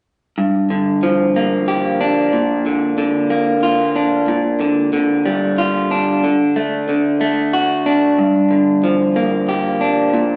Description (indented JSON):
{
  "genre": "rock",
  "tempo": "92 BPM",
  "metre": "3/4",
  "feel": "straight",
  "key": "G minor",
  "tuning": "A4 = 437 Hz",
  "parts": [
    { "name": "electric guitar through a small old amp", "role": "solo", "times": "0.4-10.4 s", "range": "G2 to G4", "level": "-16 LUFS", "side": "equal", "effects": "warbly pitch drift" }
  ],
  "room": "wet large studio reverb, RT60 1.3 s",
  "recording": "band playing live in one room, nothing above 10.5 kHz",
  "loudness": "-16 LUFS",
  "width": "mono",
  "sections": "0.4-10.4 A section",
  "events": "none",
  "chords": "0.4 Gm7; 2.3 Bb; 4.3 Gm7/Bb; 6.2 D; 8.2 Gm7",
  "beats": "| 0.38 1.03 1.68 | 2.33 2.98 3.63 | 4.29 4.94 5.59 | 6.24 6.89 7.54 | 8.19 8.84 9.49 | 10.14"
}